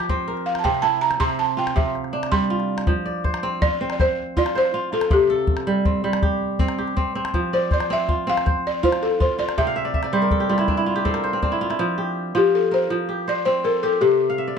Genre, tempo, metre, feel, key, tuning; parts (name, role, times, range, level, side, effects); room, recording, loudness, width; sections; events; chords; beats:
west african traditional, West African string and xylophone music; 108 BPM (dotted quarters); 12/8; straight; F major; A4 = 442 Hz
balafon; melody; 0.0-14.6 s; G4 to C6; -20 LUFS; left 2 dB
kora; arpeggios; 0.0-14.6 s; C3 to G5; -22 LUFS; right 2 dB
calabash; percussion; 0.0-11.8 s; -24 LUFS; left 1 dB
moderate small room reverb, RT60 0.5 s; dark, warm production; -19 LUFS; side -6 dB against mid
0.0-2.9 A section; 2.9-11.8 B section; 11.8-14.6 C section
balafon solo 0.0-2.9; kora fill 9.6-11.8, 14.3-14.6
0.0 F5; 0.6 C; 2.9 F5; 5.1 C5; 7.3 F5; 9.6 C; 11.8 F; 14.0 C5
0.09 | 0.65 1.20 1.76 2.32 | 2.88 3.43 3.99 4.55 | 5.11 5.67 6.22 6.78 | 7.34 7.89 8.45 9.01 | 9.56 10.12 10.68 11.23 | 11.79 12.34 12.90 13.45 | 14.01 14.56